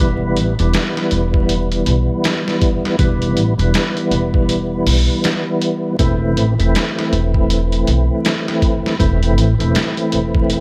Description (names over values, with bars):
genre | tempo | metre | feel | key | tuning
trip hop | 80 BPM | 4/4 | swing 60% on 16ths | E minor | A4 = 440 Hz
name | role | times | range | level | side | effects
percussive tonewheel organ | accompaniment | 0.0-10.6 s | E3 to E4 | -20 LUFS | equal | overdrive, chorus vibrato, slow rotary speaker, tremolo, tape echo
upright bass | bass | 0.0-10.6 s | E1 to B1 | -19 LUFS | equal | none
trip hop sampler-style drum kit | drums | 0.4-10.6 s | hi-hat, kick drum, snare drum | -21 LUFS | equal | none
room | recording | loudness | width
digital ambience | vinyl crackle | -16 LUFS | mono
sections
0.0-10.6 A section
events
none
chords
0.0 Em; 6.0 Am/E